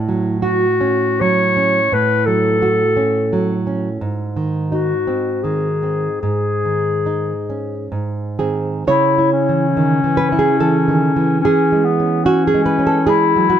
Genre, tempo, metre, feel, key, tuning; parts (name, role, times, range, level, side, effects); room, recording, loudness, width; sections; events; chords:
romantic duo for clarinet and classical guitar; 60-88 BPM; 3/4; rubato; C# minor; A4 = 438 Hz
nylon-string guitar; accompaniment; 0.0-13.6 s; G#2 to C#5; -17 LUFS; right 3 dB
mellow clarinet; melody; 0.4-13.6 s; B3 to C#5; -17 LUFS; left 4 dB
moderate plate reverb, RT60 2.8 s; -14 LUFS; side -9 dB against mid
0.0-8.9 A section; 8.9-13.6 B section
0.0 F#m/A; 4.0 G#; 6.2 G#sus4; 7.9 G#; 8.9 C#m; 11.4 C#m/E